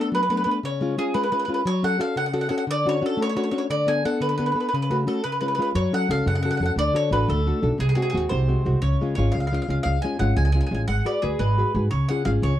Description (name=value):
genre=italian folk, Italian serenade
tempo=117 BPM (dotted quarters)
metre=6/8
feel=straight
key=unclear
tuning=A4 = 440 Hz
part: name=bowl-back mandolin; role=melody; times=0.0-12.6 s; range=G#4 to G#5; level=-26 LUFS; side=equal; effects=none
part: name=nylon-string guitar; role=accompaniment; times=0.0-12.6 s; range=B#2 to B4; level=-25 LUFS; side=left 2 dB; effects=none
part: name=upright bass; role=bass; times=5.7-12.6 s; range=G#1 to G#2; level=-22 LUFS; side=right 1 dB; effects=none
room=little or no reverb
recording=dry, close 1970s-style studio recording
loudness=-20 LUFS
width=side -12 dB against mid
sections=0.0-12.6 A section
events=none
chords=0.0 Bm7; 0.6 C#; 1.6 F#m; 2.7 Dmaj7; 3.7 Bm7/D; 4.7 F#m/C#; 5.2 C#; 5.7 F#m; 6.8 D; 7.8 G#7/B#; 8.8 C#; 10.9 G#m7; 11.9 C#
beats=0.11 | 0.62 1.13 | 1.65 2.16 | 2.67 3.18 | 3.69 4.21 | 4.72 5.23 | 5.75 6.26 | 6.78 7.29 | 7.80 8.31 | 8.83 9.34 | 9.86 10.37 | 10.89 11.40 | 11.91 12.43